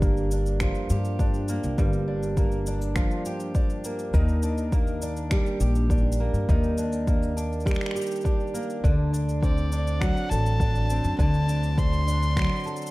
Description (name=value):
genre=folktronica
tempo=102 BPM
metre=4/4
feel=straight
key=G minor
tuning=A4 = 440 Hz
part: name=fingerpicked twelve-string acoustic guitar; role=arpeggios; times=0.0-12.9 s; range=G2 to A4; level=-29 LUFS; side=right 1 dB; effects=tape echo
part: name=upright bass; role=bass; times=0.0-12.4 s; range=G1 to G2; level=-25 LUFS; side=equal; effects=tube saturation
part: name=electronic cabasa and finger snaps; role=drums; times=0.0-12.9 s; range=none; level=-38 LUFS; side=equal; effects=overdrive
part: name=electronic kick drum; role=drums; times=0.0-12.5 s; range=none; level=-24 LUFS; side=equal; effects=overdrive
part: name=clear violin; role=melody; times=9.4-12.9 s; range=D5 to C6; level=-31 LUFS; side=equal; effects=tape echo
room=small room reverb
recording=none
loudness=-22 LUFS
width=side -20 dB against mid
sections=0.0-12.9 A section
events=none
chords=0.0 Gm7; 4.1 Ebmaj7; 8.8 D7